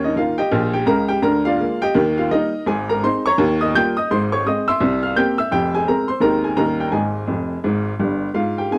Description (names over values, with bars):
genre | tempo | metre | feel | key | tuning
jazz, stride piano | 169 BPM | 4/4 | swing 62% on 8ths | Ab major | A4 = 440 Hz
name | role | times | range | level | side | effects
clear upright piano | solo | 0.0-8.8 s | F1 to G6 | -19 LUFS | equal | none
room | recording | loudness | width
studio reverb | dry, close 1970s-style studio recording | -19 LUFS | mono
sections
0.0-8.4 A section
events
upright piano fill 7.3-8.4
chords
0.0 Eb; 1.2 Bb7/D; 2.0 Eb; 2.7 Ab; 3.4 Eb9; 4.1 Ab; 4.8 C7; 5.5 Fm; 6.2 Ab/Eb; 6.6 Eb7; 6.9 Ab5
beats
0.18 0.54 0.89 | 1.25 1.61 1.96 2.32 | 2.67 3.03 3.38 3.74 | 4.09 4.45 4.80 5.16 | 5.51 5.87 6.22 6.58 | 6.93 7.29 7.64 8.00 | 8.35 8.71